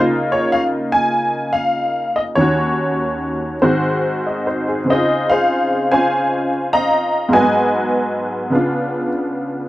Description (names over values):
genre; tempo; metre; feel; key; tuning
solo jazz; 99 BPM; 4/4; swing 67% on 8ths, rubato; Db major; A4 = 440 Hz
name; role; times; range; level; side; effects
honky-tonk upright piano; solo; 0.0-9.7 s; Eb2 to Bb5; -15 LUFS; equal; none
room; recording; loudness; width
light reverb; close, detailed microphones; -15 LUFS; side -16 dB against mid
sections
0.0-4.9 A section; 4.9-9.7 B section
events
none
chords
0.0 Db69; 2.4 Ebm7; 3.6 Ab7; 4.9 Dbmaj9; 7.3 Abm7; 8.5 Db7b9